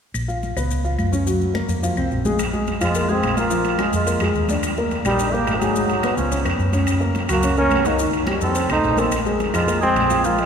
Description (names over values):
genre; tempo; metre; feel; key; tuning
Afro-Cuban jazz; 214 BPM; 4/4; straight; Bb minor; A4 = 440 Hz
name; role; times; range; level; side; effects
hollow-body short-scale fingered electric bass; bass; 0.1-10.5 s; Ab1 to Gb2; -24 LUFS; equal; none
claves; percussion; 0.1-10.1 s; none; -35 LUFS; left 3 dB; none
congas; percussion; 0.1-10.5 s; none; -29 LUFS; left 2 dB; none
maracas; percussion; 0.1-10.5 s; none; -34 LUFS; left 6 dB; none
warm grand piano; accompaniment; 0.3-10.5 s; Eb3 to Ab5; -23 LUFS; left 1 dB; none
timbales; percussion; 2.4-10.5 s; none; -29 LUFS; right 4 dB; none
bright trombone; melody; 2.8-10.5 s; F3 to Eb4; -23 LUFS; right 1 dB; none
mellow oboe; second line; 2.8-10.5 s; Db4 to C5; -26 LUFS; right 3 dB; none
room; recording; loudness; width
wet cathedral reverb, RT60 4.2 s; recorded in a church or concert hall; -18 LUFS; side -7 dB against mid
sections
0.1-2.4 A section; 2.4-10.5 B section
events
none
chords
0.1 Bbm; 0.7 Db7; 1.3 Gbmaj7; 1.8 F5; 2.4 Bbsus2; 3.5 Bb7; 4.6 Ebmaj7; 5.8 Abm7; 6.3 Db7; 6.9 Gb; 8.0 Cm; 8.6 F7; 9.1 Bbsus2